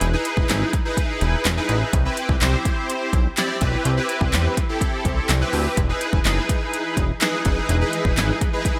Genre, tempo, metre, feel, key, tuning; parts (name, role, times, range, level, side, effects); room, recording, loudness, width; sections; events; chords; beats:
dance-pop; 125 BPM; 4/4; straight; E major; A4 = 440 Hz
big bright polysynth; accompaniment; 0.0-8.8 s; C4 to D5; -26 LUFS; equal; ensemble chorus, sidechain pumping
chorused synth bass; bass; 0.0-8.3 s; E1 to E2; -24 LUFS; equal; sidechain pumping
pop drum kit; drums; 0.0-8.8 s; handclaps, hi-hat, kick drum, snare drum; -24 LUFS; equal; overdrive, gated reverb
granular cloud pad; sustained chords; 6.8-8.8 s; E3 to D#5; -35 LUFS; equal; built-in reverb, sidechain pumping
light reverb; bright 1980s-style digital production; -21 LUFS; mono
0.0-8.8 A section
0.0 Emaj7; 1.9 Cmaj7; 5.8 Emaj7
| 0.01 0.49 0.97 1.45 | 1.93 2.41 2.89 3.37 | 3.85 4.33 4.81 5.29 | 5.77 6.25 6.73 7.21 | 7.69 8.17 8.65